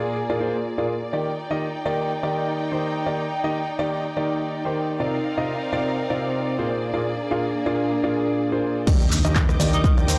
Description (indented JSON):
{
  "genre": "piano house",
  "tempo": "124 BPM",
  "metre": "4/4",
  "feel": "swing 55% on 16ths",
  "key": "Eb major",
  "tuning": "A4 = 440 Hz",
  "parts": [
    { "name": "clear symphonic violin section", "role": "sustained chords", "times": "0.0-10.2 s", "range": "Bb3 to G6", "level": "-32 LUFS", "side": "equal", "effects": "sidechain pumping" },
    { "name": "clear grand piano", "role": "riff", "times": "0.0-10.2 s", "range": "Bb2 to F5", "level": "-27 LUFS", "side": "equal", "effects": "vintage 12-bit sampler grit, sidechain pumping" },
    { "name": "warbly tape-like pad", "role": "texture", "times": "0.0-10.2 s", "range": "D4 to D6", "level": "-32 LUFS", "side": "equal", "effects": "chorus, built-in reverb, sidechain pumping" },
    { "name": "plucky analog bass", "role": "bass", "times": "8.9-10.2 s", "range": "Eb2", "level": "-25 LUFS", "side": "equal", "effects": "tube saturation, sidechain pumping" },
    { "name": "electronic kick drum", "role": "drums", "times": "8.9-9.9 s", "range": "none", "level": "-21 LUFS", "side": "equal", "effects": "overdrive" },
    { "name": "punchy analog drum machine", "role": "drums", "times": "8.9-10.2 s", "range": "crash cymbal, handclaps, hi-hat, rim click, shaker", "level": "-29 LUFS", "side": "equal", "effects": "none" },
    { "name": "impact", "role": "sound effects", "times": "9.0-10.2 s", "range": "none", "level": "-28 LUFS", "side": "equal", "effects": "none" },
    { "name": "clear tenor saxophone", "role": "melody", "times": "9.7-9.9 s", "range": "Eb4", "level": "-30 LUFS", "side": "equal", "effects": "analog delay" }
  ],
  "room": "moderate plate reverb, RT60 2.0 s",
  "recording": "dry, gritty hardware recording",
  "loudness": "-24 LUFS",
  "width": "mono",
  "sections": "0.0-8.9 A section; 8.9-10.2 B section",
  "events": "drop 8.9-10.2; impact 8.9-10.2",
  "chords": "0.0 Bb7; 1.1 Ebmaj7; 5.0 Cm11; 6.7 Bb7; 8.9 Ebmaj7",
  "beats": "0.16 0.65 | 1.13 1.61 2.10 2.58 | 3.06 3.55 4.03 4.52 | 5.00 5.49 5.97 6.45 | 6.94 7.42 7.90 8.39 | 8.87 9.36 9.84"
}